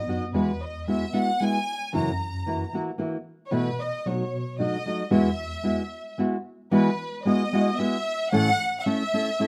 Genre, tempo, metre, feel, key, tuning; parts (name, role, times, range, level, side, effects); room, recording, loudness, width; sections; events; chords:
mexican folk, mariachi; 113 BPM; 3/4; straight; E major; A4 = 435 Hz
clear studio violin section; melody; 0.0-9.5 s; B4 to A#5; -31 LUFS; equal; plate reverb
mellow tine electric piano; bass; 0.0-5.8 s; E2 to B2; -36 LUFS; equal; medium tremolo
nylon-string guitar; accompaniment; 0.1-9.5 s; F#2 to A4; -26 LUFS; equal; plate reverb
moderate small room reverb, RT60 0.5 s; rough home demo mix; -26 LUFS; mono
0.0-6.7 A section; 6.7-9.5 A section
0.3 Eadd9; 1.9 F#7; 3.5 B7sus4; 4.1 B7; 5.1 Eadd9; 8.3 A